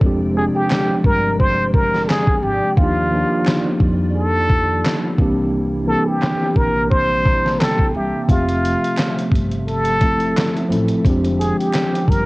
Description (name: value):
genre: lo-fi hip hop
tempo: 87 BPM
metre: 4/4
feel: swing 55% on 16ths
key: F major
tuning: A4 = 442 Hz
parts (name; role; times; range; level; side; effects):
- mellow tine electric piano; accompaniment; 0.0-12.3 s; E3 to Bb5; -20 LUFS; equal; medium stereo tremolo, low-pass filter, cassette tape
- hollow soft pad; sustained chords; 0.0-12.3 s; C3 to G5; -29 LUFS; equal; ensemble chorus, low-pass filter, cassette tape
- upright bass; bass; 0.0-12.3 s; F1 to F2; -24 LUFS; equal; none
- dusty soul sampler-style drum kit; drums; 0.0-12.3 s; handclaps, hi-hat, kick drum, snare drum; -18 LUFS; equal; vintage 12-bit sampler grit, cassette tape
- trumpet with plunger mute; melody; 0.4-12.3 s; F4 to C5; -20 LUFS; equal; low-pass filter, cassette tape
- finger snaps; percussion; 0.7-11.9 s; none; -41 LUFS; right 5 dB; none
room: light reverb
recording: home recording on cassette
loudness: -15 LUFS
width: side -22 dB against mid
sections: 0.0-12.3 A section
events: break 0.0-8.3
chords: 0.0 Fm69; 2.8 Ebmaj9; 5.2 C7; 8.3 Fmaj7; 11.0 Bb13/F (rootless)